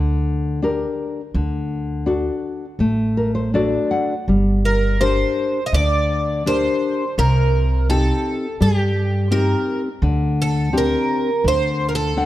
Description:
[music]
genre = fado-style ballad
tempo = 83 BPM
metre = 4/4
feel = rubato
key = G minor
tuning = A4 = 442 Hz
[part]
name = nylon-string guitar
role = accompaniment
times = 0.0-12.3 s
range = C3 to F#5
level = -21 LUFS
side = left 2 dB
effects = none
[part]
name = upright bass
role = bass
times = 0.0-12.3 s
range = G1 to G2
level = -20 LUFS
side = right 1 dB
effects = none
[part]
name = picked twelve-string acoustic guitar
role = melody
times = 4.7-12.3 s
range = G4 to Eb5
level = -21 LUFS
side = right 1 dB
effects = analog chorus
[sound]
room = light reverb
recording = dark, warm production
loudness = -17 LUFS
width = side -14 dB against mid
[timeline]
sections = 0.0-12.3 A section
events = nylon-string guitar fill 2.8-4.3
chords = 0.0 Gm; 1.3 D; 4.3 Gm; 7.2 Cm; 10.0 D7sus4; 11.4 D7(no3)

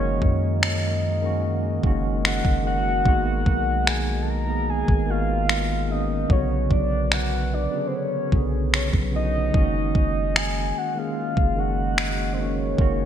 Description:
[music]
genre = contemporary R&B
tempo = 74 BPM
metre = 4/4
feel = straight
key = F# major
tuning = A4 = 439 Hz
[part]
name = soft octave-layered synth lead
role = melody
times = 0.0-13.1 s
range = B#4 to A#5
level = -27 LUFS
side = equal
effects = chorus, phaser, digital delay
[part]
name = tine electric piano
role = accompaniment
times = 0.0-13.1 s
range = C#3 to G#4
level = -27 LUFS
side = equal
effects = medium stereo tremolo
[part]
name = mellow brass ensemble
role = sustained chords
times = 0.0-13.1 s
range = B2 to D#5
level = -36 LUFS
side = left 1 dB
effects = none
[part]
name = long sustained 808-style bass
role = bass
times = 0.0-13.1 s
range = F#1 to F#2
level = -26 LUFS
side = equal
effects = none
[part]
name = smooth R&B drum kit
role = drums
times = 0.2-13.0 s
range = finger snaps, kick drum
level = -22 LUFS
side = equal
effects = gated reverb
[sound]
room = moderate lush hall reverb, RT60 2.1 s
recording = bright 1980s-style digital production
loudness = -20 LUFS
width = side -9 dB against mid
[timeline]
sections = 0.0-13.1 A section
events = none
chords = 0.0 F#69; 3.1 G#m7; 6.3 Bmadd9; 9.5 F#69

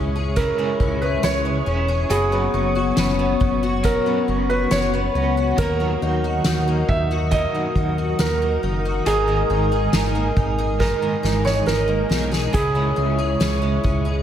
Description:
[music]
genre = dream pop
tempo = 69 BPM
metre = 4/4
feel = straight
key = C# dorian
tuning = A4 = 440 Hz
[part]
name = felt-muted upright piano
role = melody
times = 0.0-14.2 s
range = G#4 to E5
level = -24 LUFS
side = right 3 dB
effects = tape echo
[part]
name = electric guitar at the edge of break-up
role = accompaniment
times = 0.0-14.2 s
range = G#2 to B4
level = -27 LUFS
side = right 3 dB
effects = tremolo, lush chorus
[part]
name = warbly tape-like pad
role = sustained chords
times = 0.0-14.2 s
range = B3 to D#6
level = -25 LUFS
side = left 3 dB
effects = chorus, built-in reverb
[part]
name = picked twelve-string acoustic guitar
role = arpeggios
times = 0.0-14.2 s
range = D#3 to G#4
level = -29 LUFS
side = left 4 dB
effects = ensemble chorus, tape echo
[part]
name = fat analog bass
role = bass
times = 0.0-14.2 s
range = E1 to D#2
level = -23 LUFS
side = equal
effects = none
[part]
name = soft-mallet drum kit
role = drums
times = 0.4-14.0 s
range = hi-hat, kick drum, snare drum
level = -24 LUFS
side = left 1 dB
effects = none
[sound]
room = moderate plate reverb, RT60 2.8 s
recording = dreamy mix soaked in reverb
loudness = -18 LUFS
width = side -10 dB against mid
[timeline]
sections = 0.0-14.2 A section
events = drum fill 10.8-12.5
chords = 0.0 C#m; 2.1 F#sus4; 5.6 D#m; 9.1 G#sus2; 12.5 C#m

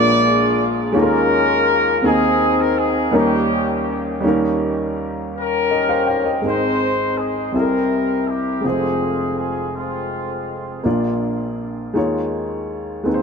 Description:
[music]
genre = gospel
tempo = 54 BPM (dotted quarters)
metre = 6/8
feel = straight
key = unclear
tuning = A4 = 440 Hz
[part]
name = warm horn section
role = melody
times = 0.0-10.8 s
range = Ab3 to D5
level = -20 LUFS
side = left 1 dB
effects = dub echo
[part]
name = warm upright piano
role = accompaniment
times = 0.0-13.2 s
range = F1 to G5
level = -19 LUFS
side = equal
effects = none
[sound]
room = moderate spring reverb, RT60 2.3 s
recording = echo-heavy mix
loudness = -16 LUFS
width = side -5 dB against mid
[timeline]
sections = 0.0-4.2 A section; 4.2-6.4 B section; 6.4-13.2 C section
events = none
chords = 0.0 Bb7; 0.9 Eb9sus4; 2.0 Ab/Eb; 3.1 Eb7; 6.4 Ab; 7.5 C7; 8.6 Fm; 10.9 Bb; 12.0 Eb9sus4

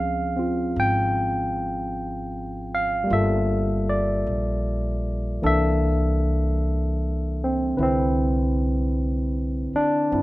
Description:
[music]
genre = jazz ballad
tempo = 51 BPM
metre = 4/4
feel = swing 66% on 8ths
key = unclear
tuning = A4 = 439 Hz
[part]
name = barky tine electric piano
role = accompaniment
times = 0.0-10.2 s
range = D3 to G5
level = -23 LUFS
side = equal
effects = overdrive
[part]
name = upright bass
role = bass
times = 0.0-10.2 s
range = G1 to Db2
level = -26 LUFS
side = equal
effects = none
[sound]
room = light reverb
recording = none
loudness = -21 LUFS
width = side -18 dB against mid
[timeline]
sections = 0.0-7.8 A section; 7.8-10.2 B section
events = none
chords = 0.0 Dbmaj7; 3.1 Gm9; 5.4 C13; 7.8 Cmaj9

